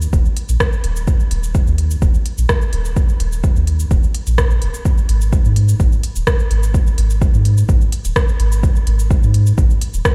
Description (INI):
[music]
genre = dub techno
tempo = 127 BPM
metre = 4/4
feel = straight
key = unclear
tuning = A4 = 440 Hz
[part]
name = soft dub sub bass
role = bass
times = 0.0-10.0 s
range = D#1 to G#2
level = -18 LUFS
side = equal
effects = tube saturation, sidechain pumping
[part]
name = deep house drum kit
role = drums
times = 0.0-10.1 s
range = cabasa, hi-hat, rim click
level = -27 LUFS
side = equal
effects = none
[part]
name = electronic kick drum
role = drums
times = 0.1-10.1 s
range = none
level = -17 LUFS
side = equal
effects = none
[sound]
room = digital ambience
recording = played on a big sound system in a bare room, stone room reverb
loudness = -16 LUFS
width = mono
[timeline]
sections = 0.0-10.1 A section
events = none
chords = none